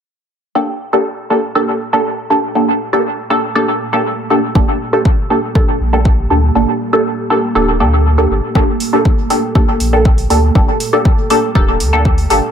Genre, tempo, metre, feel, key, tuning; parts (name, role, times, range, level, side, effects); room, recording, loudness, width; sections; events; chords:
dub techno; 120 BPM; 4/4; straight; G minor; A4 = 440 Hz
dark analog pad; sustained chords; 1.7-12.5 s; Bb3 to A4; -23 LUFS; right 3 dB; chorus, phaser, sidechain pumping
filtered dub chord stab; stabs; 0.6-12.4 s; Bb3 to A4; -14 LUFS; equal; chorus, phaser, sidechain pumping, dub echo
warm sub bass; bass; 4.6-12.4 s; D1 to D2; -14 LUFS; equal; sidechain pumping
electronic kick drum; drums; 4.6-12.2 s; -12 LUFS; equal; overdrive
electronic hi-hat; drums; 8.8-12.4 s; -23 LUFS; right 2 dB; overdrive
moderate spring reverb, RT60 1.6 s; echo-heavy mix; -11 LUFS; side -8 dB against mid
0.6-8.6 A section; 8.6-12.5 B section
filter sweep on analog synth pad 0.6-8.6; kick drops out 6.6-8.6
0.6 Gmadd9